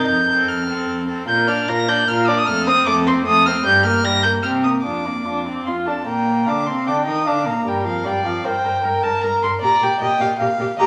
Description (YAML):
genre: quick classical-period movement for string quartet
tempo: 152 BPM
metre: 3/4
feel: straight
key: Bb major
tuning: A4 = 440 Hz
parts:
  - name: warm violin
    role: melody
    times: 0.0-10.9 s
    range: Eb5 to Bb6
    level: -21 LUFS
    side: equal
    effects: none
  - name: warm violin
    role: second line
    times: 0.0-10.9 s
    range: D4 to G5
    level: -27 LUFS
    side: equal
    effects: none
  - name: warm viola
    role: accompaniment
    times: 0.0-10.9 s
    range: F3 to Bb4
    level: -25 LUFS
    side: equal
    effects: none
  - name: warm cello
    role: bass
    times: 0.0-10.9 s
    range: Eb2 to Eb3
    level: -27 LUFS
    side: equal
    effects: none
room: wet large studio reverb, RT60 1.4 s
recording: none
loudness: -19 LUFS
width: mono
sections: 0.0-6.1 A section; 6.1-10.9 B section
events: none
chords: 0.1 F; 1.3 Bb; 2.5 F; 3.6 Gm; 4.4 C7(no3); 4.8 Bb/F; 5.7 F; 6.1 Bb; 8.5 Gm; 9.6 Gm/Bb